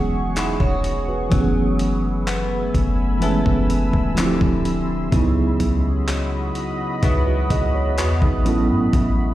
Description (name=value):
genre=contemporary R&B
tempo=63 BPM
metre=4/4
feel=straight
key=C# minor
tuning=A4 = 441 Hz
part: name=mellow FM electric piano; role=accompaniment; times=0.0-9.3 s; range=E3 to D#5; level=-22 LUFS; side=right 2 dB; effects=chorus, tremolo
part: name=deep dark ambient pad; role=sustained chords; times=0.0-9.3 s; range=A3 to E6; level=-28 LUFS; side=right 1 dB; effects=chorus, built-in reverb
part: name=direct-recorded clean electric guitar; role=arpeggios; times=0.0-9.3 s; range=A2 to A4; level=-27 LUFS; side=left 4 dB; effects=lush chorus, tape echo
part: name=clean 808-style bass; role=bass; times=0.0-9.3 s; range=D1 to A2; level=-22 LUFS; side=equal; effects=none
part: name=dusty soul sampler-style drum kit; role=drums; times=0.4-9.2 s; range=handclaps, hi-hat, kick drum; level=-22 LUFS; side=equal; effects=none
room=light reverb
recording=played on a big sound system in a bare room, large studio reverb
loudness=-17 LUFS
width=side -14 dB against mid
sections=0.0-9.3 A section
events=none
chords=0.0 E69; 1.3 F#m11; 4.2 Dm11; 5.1 C#m11